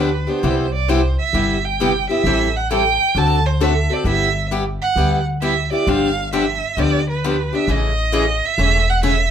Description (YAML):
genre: acoustic string swing (jazz manouche)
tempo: 133 BPM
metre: 4/4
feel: swing 65% on 8ths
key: unclear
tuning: A4 = 442 Hz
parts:
  - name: warm violin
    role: melody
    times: 0.0-9.3 s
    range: B4 to A5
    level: -20 LUFS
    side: right 5 dB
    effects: none
  - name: picked steel-string acoustic guitar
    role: accompaniment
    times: 0.0-9.2 s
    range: C3 to A4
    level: -20 LUFS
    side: left 2 dB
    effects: none
  - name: upright bass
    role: bass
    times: 0.0-9.3 s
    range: E1 to D2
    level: -20 LUFS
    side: equal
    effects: none
room: moderate club reverb, RT60 0.9 s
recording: minimal, uncompressed stereo recording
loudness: -16 LUFS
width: side -8 dB against mid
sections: 0.0-9.3 A section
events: none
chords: 0.4 Cmaj7; 2.2 Am7; 3.2 D7; 4.1 G6; 5.9 G7; 7.7 Amaj7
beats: | 0.44 0.89 1.34 1.79 | 2.25 2.70 3.15 3.60 | 4.06 4.51 4.96 5.41 | 5.87 6.32 6.77 7.22 | 7.68 8.13 8.58 9.03